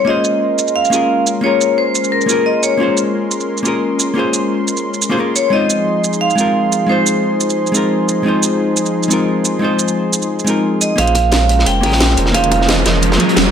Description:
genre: liquid drum and bass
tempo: 176 BPM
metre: 4/4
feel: swing 53% on 16ths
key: Bb minor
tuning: A4 = 440 Hz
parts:
  - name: vibraphone with medium hard mallets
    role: melody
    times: 0.0-2.9, 5.4-13.0 s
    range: Bb4 to G5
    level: -17 LUFS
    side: right 1 dB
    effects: tape echo
  - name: hollow-body jazz guitar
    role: accompaniment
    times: 0.0-13.5 s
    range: Ab3 to C5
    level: -18 LUFS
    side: left 1 dB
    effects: tape echo
  - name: warm analog pad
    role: sustained chords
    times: 0.0-13.5 s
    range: F3 to C6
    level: -20 LUFS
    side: left 2 dB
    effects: chorus, sidechain pumping
  - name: garage drum kit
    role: drums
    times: 0.2-13.4 s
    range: hi-hat, shaker, snare drum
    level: -18 LUFS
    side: right 2 dB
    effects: low-pass filter on perc, low-pass filter on hats, low-pass filter on snare
  - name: warm sub bass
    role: bass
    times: 11.0-13.5 s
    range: F1 to Bb1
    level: -16 LUFS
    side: equal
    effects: none
  - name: crunchy breakbeat drum kit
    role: drums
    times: 11.0-13.5 s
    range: hi-hat, snare drum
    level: -20 LUFS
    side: equal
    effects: high-pass filter on hats, high-pass filter on snare, high-pass filter on room
  - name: electronic kick drum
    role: drums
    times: 11.0-13.3 s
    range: none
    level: -23 LUFS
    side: equal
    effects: none
  - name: riser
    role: sound effects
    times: 11.9-13.5 s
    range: none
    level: -18 LUFS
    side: right 1 dB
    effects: none
room: moderate digital room reverb, RT60 1.0 s, studio ambience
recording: none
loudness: -12 LUFS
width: side -8 dB against mid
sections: 0.0-11.0 A section; 11.0-13.5 B section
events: build-up 11.0-13.5; riser 11.9-13.5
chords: 0.1 Bbm9; 5.5 Ab6; 11.0 Bbm9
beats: | 0.07 0.41 0.76 1.10 | 1.44 1.78 2.12 2.46 | 2.80 3.14 3.48 3.82 | 4.17 4.51 4.85 5.19 | 5.53 5.87 6.21 6.55 | 6.89 7.23 7.57 7.92 | 8.26 8.60 8.94 9.28 | 9.62 9.96 10.30 10.64 | 10.98 11.32 11.66 12.01 | 12.35 12.69 13.03 13.37

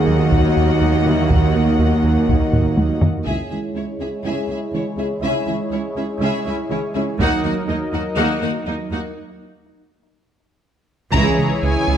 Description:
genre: cinematic, hybrid orchestral and electronic film score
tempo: 122 BPM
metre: 4/4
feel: straight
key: C# dorian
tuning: A4 = 440 Hz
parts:
  - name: dark symphonic violin section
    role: melody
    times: 0.0-3.0, 11.1-12.0 s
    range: F#5 to A#5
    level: -26 LUFS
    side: left 5 dB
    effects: low-pass filter
  - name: rich symphonic violin section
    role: second line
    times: 0.0-12.0 s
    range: G#3 to F#5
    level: -28 LUFS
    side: left 4 dB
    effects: none
  - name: rich symphonic viola section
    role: accompaniment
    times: 0.0-9.0 s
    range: A#3 to E4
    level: -27 LUFS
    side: right 2 dB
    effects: low-pass filter
  - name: brassy analog pad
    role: sustained chords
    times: 0.0-12.0 s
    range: E3 to D#5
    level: -24 LUFS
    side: equal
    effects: chorus, low-pass filter
  - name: mellow French horn section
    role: sustained chords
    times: 0.0-3.0, 11.1-12.0 s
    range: G#3 to G#4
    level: -26 LUFS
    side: left 6 dB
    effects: low-pass filter
  - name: warm trombone section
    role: sustained chords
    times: 0.0-3.0, 11.1-12.0 s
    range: C#3 to A#3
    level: -27 LUFS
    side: right 3 dB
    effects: low-pass filter
  - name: mellow tuba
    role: bass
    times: 0.0-3.1, 11.1-12.0 s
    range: C#2 to D#2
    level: -22 LUFS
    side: right 4 dB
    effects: none
  - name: rich symphonic cello section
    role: bass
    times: 0.0-12.0 s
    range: C#2 to D#2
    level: -25 LUFS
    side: right 3 dB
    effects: none
  - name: rich symphonic double bass section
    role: bass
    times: 0.0-3.1, 11.1-12.0 s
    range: C#2 to D#2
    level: -25 LUFS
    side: right 2 dB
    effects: none
  - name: soft round pluck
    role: arpeggios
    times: 0.1-12.0 s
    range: C#3 to D#4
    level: -29 LUFS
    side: left 1 dB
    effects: none
  - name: round analog bass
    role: riff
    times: 0.1-3.2, 11.1-12.0 s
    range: C#2 to D#3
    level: -21 LUFS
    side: right 2 dB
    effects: low-pass filter
  - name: solo taiko drums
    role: drums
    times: 0.3-4.2, 7.2-8.1, 11.1-11.6 s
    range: none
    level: -21 LUFS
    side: equal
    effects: none
room: moderate recital hall reverb, RT60 1.5 s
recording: none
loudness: -16 LUFS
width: side -9 dB against mid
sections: 0.0-3.3 A section; 3.3-11.1 B section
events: drum fill 2.5-3.3; filter sweep 3.3-11.1; break 9.2-11.1; band accent 11.1-11.6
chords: 0.0 D#m; 3.3 C#m; 7.2 D#m; 11.1 C#m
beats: 0.31 0.81 | 1.30 1.79 2.28 2.77 | 3.27 3.76 4.25 4.74 | 5.23 5.72 6.22 6.71 | 7.20 7.69 8.18 8.68 | 9.17 9.66 10.15 10.64 | 11.13 11.63

